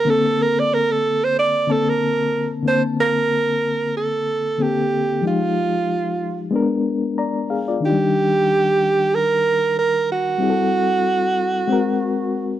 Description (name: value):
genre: soul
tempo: 93 BPM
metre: 4/4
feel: swing 54% on 16ths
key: Bb major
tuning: A4 = 439 Hz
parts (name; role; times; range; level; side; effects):
- clear alto saxophone; melody; 0.0-12.6 s; F4 to D5; -18 LUFS; right 3 dB; none
- reed electric piano; accompaniment; 0.0-12.6 s; D3 to Bb5; -21 LUFS; left 4 dB; fast tremolo
room: small room ambience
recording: dry, close 1970s-style studio recording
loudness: -17 LUFS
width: side -12 dB against mid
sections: 0.0-2.7 A section; 2.7-12.6 B section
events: alto saxophone solo 0.0-2.7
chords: 0.0 Bbmaj9; 5.2 Fm9; 6.5 Bb7b9; 7.8 Ebmaj7; 10.4 Am7; 11.7 Ab9